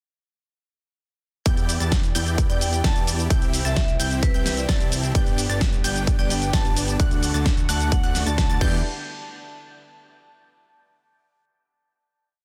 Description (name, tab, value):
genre	EDM, festival progressive house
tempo	130 BPM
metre	4/4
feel	straight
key	E minor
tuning	A4 = 439 Hz
part	lush unison pad	sustained chords	1.5-8.8 s	D3 to G4	-40 LUFS	equal	none
part	unison pluck	arpeggios	1.5-8.8 s	F#6 to A6	-36 LUFS	equal	sidechain pumping, dub echo
part	dense compressed supersaw	riff	1.5-8.8 s	A3 to A5	-34 LUFS	equal	sidechain pumping, dub echo
part	fat analog bass	bass	1.5-8.8 s	G1 to E2	-28 LUFS	equal	sidechain pumping
part	big-room dance drum kit	drums	1.5-8.7 s	crash cymbal, hi-hat, shaker, snare drum	-30 LUFS	equal	none
part	electronic kick drum	drums	1.5-8.7 s	none	-24 LUFS	equal	none
part	vibraphone with hard mallets	melody	2.5-8.5 s	B4 to A5	-34 LUFS	equal	dub echo
part	dark concert grand piano	accompaniment	5.1-8.9 s	G2 to D5	-35 LUFS	equal	sidechain pumping, dub echo
room	little or no reverb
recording	dense, heavily limited modern master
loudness	-22 LUFS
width	mono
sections	1.5-8.8 drop; 8.8-10.7 final hit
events	drop 1.5-8.8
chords	1.5 Em7; 3.3 C; 5.2 G; 7.0 D; 8.6 Em7; 8.8 N.C.